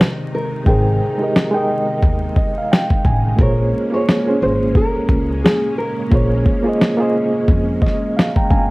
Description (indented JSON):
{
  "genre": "lo-fi hip hop",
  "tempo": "88 BPM",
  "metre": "4/4",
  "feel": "swing 58% on 16ths",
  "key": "unclear",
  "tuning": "A4 = 440 Hz",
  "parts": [
    { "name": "nylon-string guitar", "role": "melody", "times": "0.0-6.8 s", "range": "Ab4 to Db5", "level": "-23 LUFS", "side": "left 1 dB", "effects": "low-pass filter, plate reverb" },
    { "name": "reed electric piano", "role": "accompaniment", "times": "0.0-8.7 s", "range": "Ab3 to Bb5", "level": "-19 LUFS", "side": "right 1 dB", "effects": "fast tremolo, cassette tape, low-pass filter" },
    { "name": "string machine, cellos", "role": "sustained chords", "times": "0.0-8.7 s", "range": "C3 to Eb4", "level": "-25 LUFS", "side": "equal", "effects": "ensemble chorus, low-pass filter" },
    { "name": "dusty soul sampler-style drum kit", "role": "drums", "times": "0.0-8.7 s", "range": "kick drum, snare drum", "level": "-15 LUFS", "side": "equal", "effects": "overdrive" },
    { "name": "upright bass", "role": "bass", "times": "0.7-8.7 s", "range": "G1 to F2", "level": "-19 LUFS", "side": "equal", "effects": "none" }
  ],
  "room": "moderate studio reverb, RT60 0.6 s",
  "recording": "worn, warbling old tape, cassette tape, vinyl crackle, warbly pitch drift",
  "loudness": "-14 LUFS",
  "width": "side -22 dB against mid",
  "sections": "0.0-8.7 A section",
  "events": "break 0.0-8.7; reed electric piano fill 2.0-3.4, 7.5-8.7",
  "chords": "0.0 Abmaj7; 3.4 Bbm9"
}